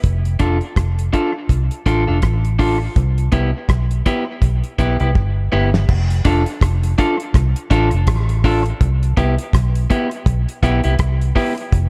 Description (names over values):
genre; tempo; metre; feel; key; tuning
roots reggae; 82 BPM; 4/4; swing 58% on 16ths; C major; A4 = 439 Hz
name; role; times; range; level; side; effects
vintage muted fingered electric bass; bass; 0.0-11.9 s; F1 to C2; -19 LUFS; equal; none
damped 70s drum kit; drums; 0.0-11.9 s; crash cymbal, hi-hat, kick drum, rim click, snare drum; -20 LUFS; equal; none
electric guitar at the edge of break-up; accompaniment; 0.4-11.5 s; B3 to A4; -23 LUFS; equal; dub echo
room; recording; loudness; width
small room ambience; echo-heavy mix; -17 LUFS; mono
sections
0.0-5.9 A section; 5.9-11.9 B section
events
drum fill 5.2-5.9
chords
0.0 F6; 3.0 Cmaj7; 5.9 F6; 8.8 Cmaj7